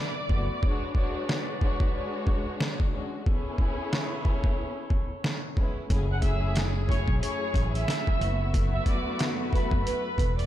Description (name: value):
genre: hip hop, boom-bap hip-hop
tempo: 91 BPM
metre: 4/4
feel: swing 60% on 16ths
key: unclear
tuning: A4 = 440 Hz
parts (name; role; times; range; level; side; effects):
- warm studio violin section; melody; 0.0-0.6, 6.1-10.5 s; B4 to F#6; -33 LUFS; right 1 dB; high-pass filter, low-pass filter, diffuse ambient delay
- warm studio string section; accompaniment; 0.0-10.5 s; F#2 to C#5; -34 LUFS; left 2 dB; cassette tape, high-pass filter, low-pass filter
- warm horn section; stabs; 0.0-10.5 s; C#4 to E5; -40 LUFS; right 1 dB; high-pass filter, low-pass filter, diffuse ambient delay
- mellow fretless electric bass; bass; 0.3-0.5, 5.9-10.5 s; E1 to B1; -28 LUFS; equal; none
- trip hop sampler-style drum kit; drums; 0.3-10.5 s; hi-hat, kick drum, snare drum; -27 LUFS; equal; none
room: light reverb, studio reverb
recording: none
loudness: -25 LUFS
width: side -12 dB against mid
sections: 0.0-10.5 A section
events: break 0.0-5.9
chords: 0.0 D69/F#; 0.6 Bm69/G#; 3.3 Amaj7; 5.9 F#m9; 8.2 D69/F#